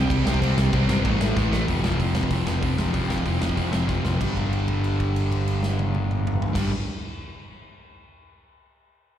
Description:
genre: punk rock.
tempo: 189 BPM.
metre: 4/4.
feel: straight.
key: unclear.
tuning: A4 = 440 Hz.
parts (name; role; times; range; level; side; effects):
lightly driven lead guitar; melody; 0.0-1.4 s; G3 to G4; -28 LUFS; right 2 dB; none.
overdriven semi-hollow guitar; riff; 0.0-6.7 s; F2 to C4; -29 LUFS; right 13 dB; none.
sludgy distorted guitar; riff; 0.0-6.7 s; F2 to C4; -27 LUFS; left 6 dB; overdrive, slapback echo.
picked electric bass; bass; 0.0-6.7 s; F1 to C2; -25 LUFS; equal; none.
big rock drum kit; drums; 0.1-6.6 s; crash cymbal, hi-hat, kick drum, snare drum, toms; -28 LUFS; equal; none.
room: little or no reverb.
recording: live gig heard through the venue's PA, recital hall reverb.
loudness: -21 LUFS.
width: side -10 dB against mid.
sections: 0.0-1.7 A section; 1.7-4.2 B section; 4.2-6.7 C section.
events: drum fill 1.4-1.7, 3.9-4.2; held note 4.2-6.6.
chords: 0.0 C5; 1.0 A5; 1.7 F5; 4.2 G5.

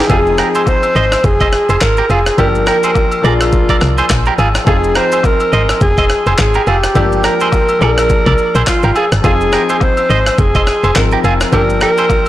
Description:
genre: afrobeats.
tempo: 105 BPM.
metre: 4/4.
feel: swing 58% on 16ths.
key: F dorian.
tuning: A4 = 440 Hz.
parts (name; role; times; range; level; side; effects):
breathy alto saxophone; melody; 0.0-12.3 s; F4 to C5; -15 LUFS; right 1 dB; none.
warm grand piano; accompaniment; 0.0-12.3 s; F3 to Bb4; -20 LUFS; left 5 dB; none.
clean electric guitar; riff; 0.0-12.0 s; D4 to Eb5; -18 LUFS; right 4 dB; spring reverb, tape echo.
woody log drum bass; bass; 0.0-11.9 s; F1 to C2; -15 LUFS; equal; none.
jungle sampler-style drum kit; drums; 0.0-12.3 s; handclaps, kick drum, rim click, shaker, snare drum; -16 LUFS; equal; soft clipping on snare.
agogo bells and woodblock; percussion; 0.1-12.3 s; none; -22 LUFS; left 2 dB; none.
room: light reverb, small room reverb.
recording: blown-out, overdriven recording, overdrive.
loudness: -10 LUFS.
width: side -14 dB against mid.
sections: 0.1-12.3 A section.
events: none.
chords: 0.1 Fm7; 2.4 Gm7; 3.2 Bb7; 4.7 Fm7; 7.0 Gm7; 9.2 Fm7; 11.5 Gm7.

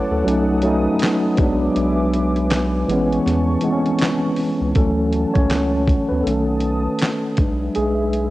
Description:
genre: lo-fi hip hop.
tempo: 80 BPM.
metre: 4/4.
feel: swing 60% on 16ths.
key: A major.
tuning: A4 = 443 Hz.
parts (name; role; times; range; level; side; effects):
mellow tine electric piano; accompaniment; 0.0-8.3 s; D#3 to C#5; -18 LUFS; equal; fast stereo tremolo, low-pass filter, cassette tape.
dark analog pad; sustained chords; 0.0-8.3 s; C#4 to D#6; -29 LUFS; equal; chorus, low-pass filter, cassette tape.
round analog bass; bass; 0.1-8.3 s; A1 to E2; -23 LUFS; equal; none.
dusty soul sampler-style drum kit; drums; 0.3-8.3 s; handclaps, hi-hat, kick drum, snare drum; -21 LUFS; equal; vintage 12-bit sampler grit, cassette tape.
room: light reverb, digital ambience.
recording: home recording on cassette.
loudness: -16 LUFS.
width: side -17 dB against mid.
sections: 0.0-4.8 A section; 4.8-8.3 B section.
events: kick muted 1.8-4.8; tine electric piano solo 4.8-8.3.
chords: 0.3 B7; 1.4 E7/B; 2.9 Amaj9; 4.8 Dmaj7; 6.3 B7; 7.4 E7/B.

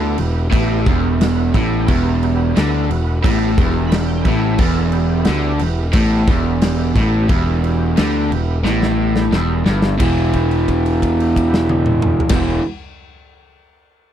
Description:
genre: blues rock power trio and southern rock.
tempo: 89 BPM.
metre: 4/4.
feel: straight.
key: E minor.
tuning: A4 = 439 Hz.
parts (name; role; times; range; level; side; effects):
overdriven tonewheel organ; sustained chords; 0.0-12.6 s; B3 to B5; -27 LUFS; right 5 dB; slow rotary speaker, chorus vibrato.
overdriven electric guitar; riff; 0.0-12.6 s; E2 to E3; -18 LUFS; equal; none.
fuzz picked electric bass; bass; 0.0-12.6 s; E1 to D2; -19 LUFS; equal; overdrive.
big rock drum kit; drums; 0.2-12.5 s; crash cymbal, kick drum, snare drum, toms; -20 LUFS; equal; none.
room: little or no reverb.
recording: dry, close 1970s-style studio recording.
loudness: -14 LUFS.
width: side -10 dB against mid.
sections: 0.0-10.0 A section; 10.0-12.7 B section.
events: tonewheel organ fill 3.6-4.6; drum fill 8.7-10.0; held note 10.0-12.3.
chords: 0.0 Em.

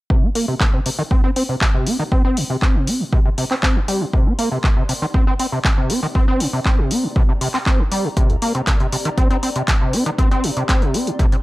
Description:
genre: acid house.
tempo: 119 BPM.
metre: 4/4.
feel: straight.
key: unclear.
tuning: A4 = 440 Hz.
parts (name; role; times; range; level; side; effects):
overdriven acid bass; riff; 0.1-11.4 s; C2 to C4; -21 LUFS; equal; distortion, analog chorus, sidechain pumping, tape echo.
electronic kick drum; drums; 0.1-11.3 s; none; -16 LUFS; equal; none.
granular cloud pad; texture; 2.9-11.4 s; C4 to C6; -35 LUFS; equal; none.
punchy analog drum machine; drums; 0.4-11.4 s; handclaps, hi-hat; -24 LUFS; equal; none.
room: little or no reverb.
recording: dry, gritty hardware recording.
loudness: -16 LUFS.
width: side -18 dB against mid.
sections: 0.1-11.4 A section.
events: filter sweep on acid bass 0.1-11.4.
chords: 0.1 C5.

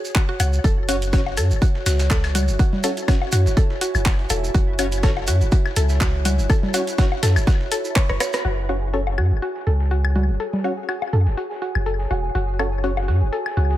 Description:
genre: minimal techno.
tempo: 123 BPM.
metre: 4/4.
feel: swing 55% on 16ths.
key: unclear.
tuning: A4 = 440 Hz.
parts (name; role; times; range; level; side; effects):
shekere; percussion; 0.0-8.4 s; none; -32 LUFS; right 4 dB; none.
warbly tape-like pad; texture; 0.0-13.8 s; F#4 to G#5; -31 LUFS; right 2 dB; chorus, built-in reverb, sidechain pumping.
mallet-like synth pluck; riff; 0.2-13.6 s; F#4 to F#5; -28 LUFS; left 1 dB; chorus, sidechain pumping, ping-pong delay.
electronic kick drum; drums; 0.2-8.1 s; none; -18 LUFS; equal; none.
house drum kit; drums; 0.2-8.4 s; handclaps, hi-hat, rim click; -26 LUFS; right 1 dB; low-pass filter on hats, low-pass filter on snare, low-pass filter on room.
punchy sub bass; bass; 0.4-13.8 s; E1 to F#2; -20 LUFS; equal; sidechain pumping.
woodblock and congas; percussion; 0.4-13.5 s; none; -28 LUFS; left 3 dB; ping-pong delay.
dusty soul sampler-style drum kit; drums; 0.6-13.8 s; hi-hat, snare drum; -37 LUFS; left 1 dB; overdrive, sidechain pumping on hats, high-pass filter on hats, low-pass filter on hats, high-pass filter on snare, low-pass filter on snare, high-pass filter on room, low-pass filter on room.
pulsing gated texture; texture; 0.6-13.8 s; E4 to G#5; -35 LUFS; right 1 dB; chorus, built-in reverb, sidechain pumping.
wavetable chord stab; stabs; 0.9-12.9 s; C#4 to C#5; -28 LUFS; left 1 dB; ping-pong delay.
room: little or no reverb.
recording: none.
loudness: -18 LUFS.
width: side -14 dB against mid.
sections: 0.0-8.4 A section; 8.4-13.8 B section.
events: fade-in on ambient pad 0.0-8.4; drum fill 8.0-8.4; band accent 8.3.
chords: 0.0 F#5.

